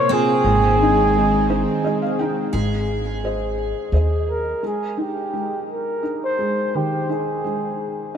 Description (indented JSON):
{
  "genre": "acoustic folk-pop ballad",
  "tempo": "86 BPM",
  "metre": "3/4",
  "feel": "straight",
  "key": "Ab major",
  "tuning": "A4 = 440 Hz",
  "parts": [
    { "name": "mellow flugelhorn", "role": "melody", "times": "0.0-8.1 s", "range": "G4 to Db5", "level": "-22 LUFS", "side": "equal", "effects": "none" },
    { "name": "mellow French horn", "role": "second line", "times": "0.0-2.1 s", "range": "Eb4 to F4", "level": "-33 LUFS", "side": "right 2 dB", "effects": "none" },
    { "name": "felt-muted upright piano", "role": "accompaniment", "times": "0.0-8.2 s", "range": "Eb3 to G5", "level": "-25 LUFS", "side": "equal", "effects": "lush chorus" },
    { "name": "airy breathy pad", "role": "sustained chords", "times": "0.0-2.5 s", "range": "Bb2 to C4", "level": "-26 LUFS", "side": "left 2 dB", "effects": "chorus" },
    { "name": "picked steel-string acoustic guitar", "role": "arpeggios", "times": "0.0-4.9 s", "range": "C3 to Ab4", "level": "-28 LUFS", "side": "right 4 dB", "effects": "lush chorus, tape echo" },
    { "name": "upright bass", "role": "bass", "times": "0.4-4.5 s", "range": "Ab1 to Eb2", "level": "-22 LUFS", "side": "equal", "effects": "none" }
  ],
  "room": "wet huge ambient reverb, RT60 5.0 s",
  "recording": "dreamy mix soaked in reverb",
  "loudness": "-18 LUFS",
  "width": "side -8 dB against mid",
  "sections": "0.0-2.5 A section; 2.5-4.6 B section; 4.6-8.2 C section",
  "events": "none",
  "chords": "0.4 Ab; 4.6 Ab5"
}